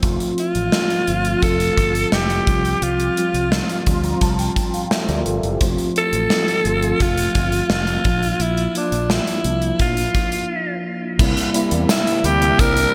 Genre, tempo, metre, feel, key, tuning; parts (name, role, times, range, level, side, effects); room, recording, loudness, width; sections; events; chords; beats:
1980s-style pop; 86 BPM; 4/4; straight; F major; A4 = 444 Hz
mellow tine electric piano; accompaniment; 0.0-12.9 s; F3 to C6; -25 LUFS; equal; ensemble chorus
fretless electric bass; bass; 0.0-12.9 s; F1 to E2; -25 LUFS; equal
gated 80s drum kit; drums; 0.0-12.9 s; crash cymbal, hi-hat, kick drum, snare drum, tambourine; -23 LUFS; equal; gated reverb
breathy alto saxophone; melody; 0.4-12.9 s; D4 to Bb4; -23 LUFS; equal; digital delay
soft string machine; sustained chords; 11.2-12.9 s; C3 to E5; -31 LUFS; equal
tambourine; percussion; 11.2-12.8 s; -37 LUFS; equal
moderate lush hall reverb, RT60 2.9 s; bright 1980s-style digital production; -19 LUFS; mono
0.0-11.2 A section; 11.2-12.9 B section
tine electric piano fill 3.5-5.6; break 10.5-11.2
0.0 F; 2.5 Csus4; 5.6 F; 8.1 Bb; 11.2 C7
| 0.03 0.73 1.43 2.12 | 2.82 3.52 4.22 4.91 | 5.61 6.31 7.01 7.71 | 8.40 9.10 9.80 10.50 | 11.19 11.89 12.59